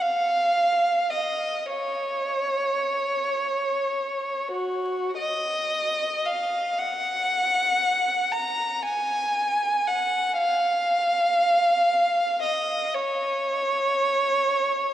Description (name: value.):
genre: classical, free, expressive piece for unaccompanied violin.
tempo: free time.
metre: none.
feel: none.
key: Db major.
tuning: A4 = 439 Hz.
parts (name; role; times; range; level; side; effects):
rich violin; solo; 0.0-14.9 s; Gb4 to Bb5; -22 LUFS; equal; none.
room: wet cathedral reverb, RT60 4.6 s.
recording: dark, warm production, vinyl crackle.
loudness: -22 LUFS.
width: side -12 dB against mid.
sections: 0.0-14.9 A section.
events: none.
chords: none.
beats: free time.